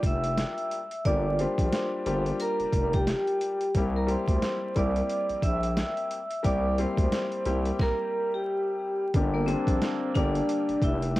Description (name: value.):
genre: hip hop, boom-bap hip-hop.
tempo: 89 BPM.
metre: 4/4.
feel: swing 59% on 16ths.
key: G dorian.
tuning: A4 = 440 Hz.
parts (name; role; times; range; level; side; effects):
warm upright piano; accompaniment; 0.0-11.2 s; D3 to G4; -32 LUFS; left 4 dB; cassette tape, high-pass filter, low-pass filter.
growling FM bass; bass; 0.0-11.2 s; F1 to D2; -29 LUFS; equal; none.
boom bap sampler-style drum kit; drums; 0.0-11.2 s; hi-hat, kick drum, snare drum; -28 LUFS; equal; overdrive.
vibraphone with hard mallets; melody; 0.1-11.2 s; Bb3 to E6; -29 LUFS; equal; high-pass filter, low-pass filter.
muted trumpet section; stabs; 9.1-11.1 s; Bb3 to A4; -39 LUFS; right 7 dB; high-pass filter, low-pass filter, analog delay.
room: light reverb, small room ambience.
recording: home recording on cassette, vinyl crackle.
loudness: -25 LUFS.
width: side -17 dB against mid.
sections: 0.0-9.1 A section; 9.1-11.2 B section.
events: none.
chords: 0.0 Gm7; 3.7 C7; 9.1 Gm.